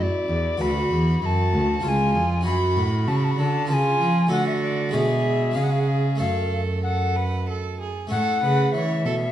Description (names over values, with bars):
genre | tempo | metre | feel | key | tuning
classical, baroque-style sonata movement with continuo | 96 BPM | 3/4 | straight | F# minor | A4 = 437 Hz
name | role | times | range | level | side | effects
tenor recorder | melody | 0.0-9.3 s | D5 to B5 | -26 LUFS | left 4 dB | none
rich violin | second line | 0.0-9.1 s | E4 to C#5 | -30 LUFS | right 6 dB | none
harpsichord | accompaniment | 0.0-9.3 s | C#2 to D5 | -26 LUFS | equal | none
rich cello | bass | 0.0-9.3 s | C#2 to E#3 | -24 LUFS | right 1 dB | none
room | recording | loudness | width
moderate recital hall reverb, RT60 1.3 s | dark, warm production | -20 LUFS | side -11 dB against mid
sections
0.0-8.1 A section; 8.1-9.3 A section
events
none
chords
0.0 D; 0.6 Bm/D; 1.8 C#; 2.5 F#m; 3.7 C#7; 4.3 D; 4.9 G#m7b5/B; 5.6 C#; 6.2 F#m; 8.1 A